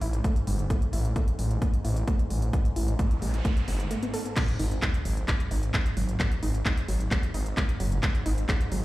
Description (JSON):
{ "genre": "driving peak-time techno", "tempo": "131 BPM", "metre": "4/4", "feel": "straight", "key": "unclear", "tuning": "A4 = 441 Hz", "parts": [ { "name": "warbly dusty pluck", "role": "riff", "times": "0.0-8.7 s", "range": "F#3 to A4", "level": "-35 LUFS", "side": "equal", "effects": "chorus, sidechain pumping, digital delay" }, { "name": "detuned saw bass", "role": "bass", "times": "0.0-8.8 s", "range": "F#1 to A1", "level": "-27 LUFS", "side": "equal", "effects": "sidechain pumping" }, { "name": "swarming drone", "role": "drone", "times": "0.0-8.8 s", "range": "G#2", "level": "-36 LUFS", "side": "equal", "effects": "built-in reverb, sidechain pumping" }, { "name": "techno drum kit", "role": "drums", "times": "0.0-8.8 s", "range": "crash cymbal, handclaps, hi-hat", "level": "-34 LUFS", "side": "equal", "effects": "sidechain pumping on hats, sidechain pumping on cymbals" }, { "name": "electronic kick drum", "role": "drums", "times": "0.2-8.6 s", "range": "none", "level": "-27 LUFS", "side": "equal", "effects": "none" }, { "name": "noise sweep and sub drop", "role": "sound effects", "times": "2.9-6.2 s", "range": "none", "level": "-38 LUFS", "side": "equal", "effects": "none" } ], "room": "light reverb", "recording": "played on a big sound system in a bare room, large studio reverb", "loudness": "-24 LUFS", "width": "side -18 dB against mid", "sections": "0.0-4.4 A section; 4.4-8.8 B section", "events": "noise sweep 2.9-4.4; break 3.9-4.4; drop 4.4-8.8; impact 4.4-6.2", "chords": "0.0 A5; 4.4 G#5" }